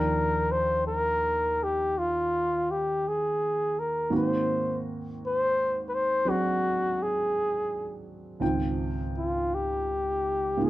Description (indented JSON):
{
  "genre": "jazz ballad",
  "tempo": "56 BPM",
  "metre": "4/4",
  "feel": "swing 66% on 8ths",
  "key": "Eb major",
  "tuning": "A4 = 440 Hz",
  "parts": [
    { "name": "mellow flugelhorn", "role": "melody", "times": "0.0-10.7 s", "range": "F4 to C5", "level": "-26 LUFS", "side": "left 1 dB", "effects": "none" },
    { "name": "warm concert grand piano", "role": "accompaniment", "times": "0.0-10.7 s", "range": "Db2 to G5", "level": "-31 LUFS", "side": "right 2 dB", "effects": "none" }
  ],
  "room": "moderate studio reverb, RT60 0.8 s",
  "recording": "dark, warm production",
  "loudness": "-25 LUFS",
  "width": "side -16 dB against mid",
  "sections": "0.0-10.7 A section",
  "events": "none",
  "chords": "0.0 Ebmaj9; 4.1 Ab9; 8.4 Dbmaj9#11",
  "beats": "0.85 1.94 3.03 | 4.11 5.19 6.26 7.34 | 8.41 9.49 10.57"
}